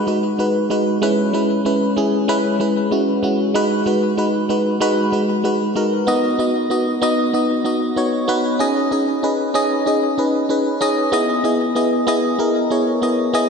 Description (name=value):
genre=pop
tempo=95 BPM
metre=4/4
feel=straight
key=B major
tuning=A4 = 440 Hz
part: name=FM electric piano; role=solo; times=0.0-13.5 s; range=G#3 to D#5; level=-16 LUFS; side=equal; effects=chorus, ping-pong delay
room=wet plate reverb, RT60 3.2 s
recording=dreamy mix soaked in reverb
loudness=-16 LUFS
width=side -5 dB against mid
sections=0.0-6.1 A section; 6.1-13.5 B section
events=none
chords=0.0 G#m7; 1.0 C#m7; 3.5 G#m7; 6.1 B; 8.6 C#sus2; 11.1 Emaj7